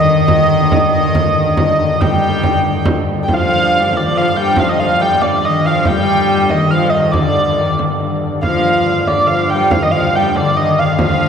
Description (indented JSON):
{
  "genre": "medieval dance",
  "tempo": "140 BPM",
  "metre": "3/4",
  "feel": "straight",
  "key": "unclear",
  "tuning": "A4 = 440 Hz",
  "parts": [
    { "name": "dark hurdy-gurdy", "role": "melody", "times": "0.0-11.3 s", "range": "D5 to G5", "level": "-15 LUFS", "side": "right 1 dB", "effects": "none" },
    { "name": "clear viola da gamba", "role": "second line", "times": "0.0-11.3 s", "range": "D3 to G3", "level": "-16 LUFS", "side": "left 3 dB", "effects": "none" },
    { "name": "pipe organ, strings celeste", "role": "drone", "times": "0.0-11.3 s", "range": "G2 to D3", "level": "-21 LUFS", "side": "right 1 dB", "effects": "none" },
    { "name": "frame drum", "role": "percussion", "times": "0.1-11.2 s", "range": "none", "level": "-21 LUFS", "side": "right 1 dB", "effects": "none" }
  ],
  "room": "wet cathedral reverb, RT60 5.5 s",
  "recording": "recorded in a church or concert hall",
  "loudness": "-11 LUFS",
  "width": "side -7 dB against mid",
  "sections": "0.0-3.3 A section; 3.3-11.3 B section",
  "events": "none",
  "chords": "none"
}